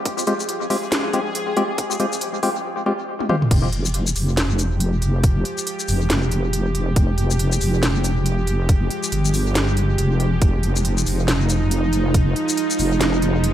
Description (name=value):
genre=deep dubstep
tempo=139 BPM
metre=4/4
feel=swing 59% on 16ths, half-time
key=F minor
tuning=A4 = 440 Hz
part: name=bowed-like drone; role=sustained chords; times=0.0-13.5 s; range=F3 to Ab4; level=-26 LUFS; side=right 1 dB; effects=built-in reverb
part: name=electronic kick drum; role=drums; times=0.1-12.2 s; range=none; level=-19 LUFS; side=equal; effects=high-pass filter on kick, high-pass filter on room
part: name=garage drum kit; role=drums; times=0.1-13.5 s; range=crash cymbal, hi-hat, shaker, snare drum, toms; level=-24 LUFS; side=equal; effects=tape echo
part: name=percussive organ stab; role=stabs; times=0.3-3.4 s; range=Ab3 to G4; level=-22 LUFS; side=left 1 dB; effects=chorus, dub echo
part: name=wobble bass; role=bass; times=3.5-13.5 s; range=F1 to G1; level=-19 LUFS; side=equal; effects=chorus
room=light reverb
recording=echo-heavy mix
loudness=-18 LUFS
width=side -11 dB against mid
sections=0.0-3.5 A section; 3.5-13.5 B section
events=build-up 0.0-3.5; drum fill 3.2-3.5; drop 3.5-13.5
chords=0.0 Fmadd9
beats=| 0.06 0.49 0.92 1.35 | 1.78 2.21 2.65 3.08 | 3.51 3.94 4.37 4.80 | 5.24 5.67 6.10 6.53 | 6.96 7.39 7.83 8.26 | 8.69 9.12 9.55 9.98 | 10.42 10.85 11.28 11.71 | 12.14 12.57 13.01 13.44